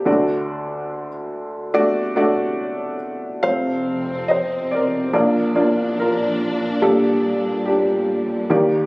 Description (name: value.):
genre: acoustic folk-pop ballad.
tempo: 71 BPM.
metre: 4/4.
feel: straight.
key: G minor.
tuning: A4 = 440 Hz.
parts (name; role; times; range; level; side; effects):
clear upright piano; melody; 0.0-8.9 s; F1 to F5; -18 LUFS; equal; none.
warm symphonic string section; sustained chords; 3.4-8.9 s; Eb2 to D4; -24 LUFS; equal; none.
room: light reverb.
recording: recorded on a phone in the room, club reverb.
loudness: -17 LUFS.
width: side -25 dB against mid.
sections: 0.0-3.4 A section; 3.4-8.9 A section.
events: none.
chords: 0.1 D; 3.4 F; 5.1 Bb; 6.8 Gm/Bb.